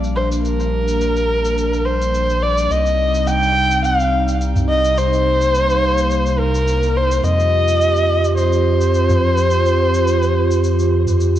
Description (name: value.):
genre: organic downtempo.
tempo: 106 BPM.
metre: 4/4.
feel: swing 54% on 16ths.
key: C minor.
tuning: A4 = 440 Hz.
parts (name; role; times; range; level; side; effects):
warbly tape-like pad; sustained chords; 0.0-11.4 s; C3 to G4; -21 LUFS; right 2 dB; chorus, built-in reverb, vintage 12-bit sampler grit.
round analog bass; bass; 0.0-11.4 s; Bb1 to F2; -19 LUFS; equal; tube saturation.
shaker; drums; 0.0-11.4 s; none; -35 LUFS; left 2 dB; overdrive, low-pass filter on perc, low-pass filter on room.
quartz singing bowl; texture; 0.0-11.4 s; G3 to G4; -43 LUFS; left 2 dB; none.
dark kamancheh; melody; 0.2-11.2 s; Bb4 to G5; -18 LUFS; equal; ping-pong delay.
udu; percussion; 4.6-4.7, 9.1-11.2 s; none; -21 LUFS; equal; none.
room: moderate digital room reverb, RT60 1.1 s.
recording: worn, warbling old tape, cassette tape, warbly pitch drift.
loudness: -14 LUFS.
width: side -11 dB against mid.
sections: 0.0-11.4 A section.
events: none.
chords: 0.0 Bb6; 2.7 Cm; 7.2 F5.